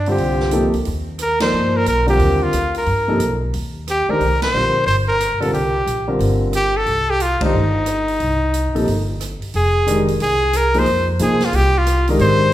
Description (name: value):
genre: modal jazz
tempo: 180 BPM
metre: 4/4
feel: swing 64% on 8ths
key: C dorian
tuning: A4 = 440 Hz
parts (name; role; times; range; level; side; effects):
- clear trumpet; melody; 0.0-12.5 s; Eb4 to C5; -18 LUFS; equal; none
- upright bass; bass; 0.0-12.5 s; F1 to C3; -21 LUFS; equal; none
- warm grand piano; accompaniment; 0.1-12.5 s; C3 to D5; -20 LUFS; equal; none
- swinging big-band drum kit; drums; 0.1-12.3 s; hi-hat, kick drum, ride cymbal, rim click, snare drum; -30 LUFS; right 2 dB; none
room: wet recital hall reverb, RT60 1.3 s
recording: recorded in a church or concert hall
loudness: -15 LUFS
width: side -13 dB against mid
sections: 0.0-9.5 A section; 9.5-12.5 B section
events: band accent 1.4, 4.4, 7.4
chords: 0.0 Cm9; 9.5 Fm11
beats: | 0.19 0.52 0.86 1.19 | 1.53 1.86 2.20 2.53 | 2.87 3.20 3.54 3.87 | 4.20 4.54 4.87 5.20 | 5.54 5.87 6.21 6.54 | 6.87 7.21 7.54 7.87 | 8.21 8.54 8.87 9.20 | 9.54 9.87 10.20 10.53 | 10.87 11.20 11.53 11.86 | 12.20 12.53